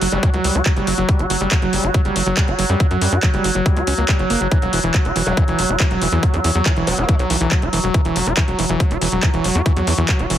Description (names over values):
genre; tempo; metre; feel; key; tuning
psychedelic trance; 140 BPM; 4/4; straight; unclear; A4 = 440 Hz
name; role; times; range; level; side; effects
overtone-sweeping drone; sustained chords; 0.0-10.4 s; F#3; -23 LUFS; right 1 dB; chorus, built-in reverb, sidechain pumping
overdriven acid bass; riff; 0.0-10.4 s; E3 to G4; -22 LUFS; right 1 dB; auto-pan, sidechain pumping, tape echo
tight sequencer bass; bass; 0.0-10.4 s; E1 to F#2; -21 LUFS; equal; none
drum and bass drum kit; drums; 0.0-10.4 s; handclaps, hi-hat; -23 LUFS; equal; none
vowel-sweep wobble bass; second line; 0.1-0.3, 5.3-7.2 s; G#3 to C#4; -31 LUFS; left 2 dB; none
electronic kick drum; drums; 0.2-10.2 s; none; -17 LUFS; equal; none
room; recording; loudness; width
light reverb, digital ambience; heavily compressed radio sound, multiband compression; -15 LUFS; side -11 dB against mid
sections
0.0-10.4 A section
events
none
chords
0.0 F#5; 4.5 E5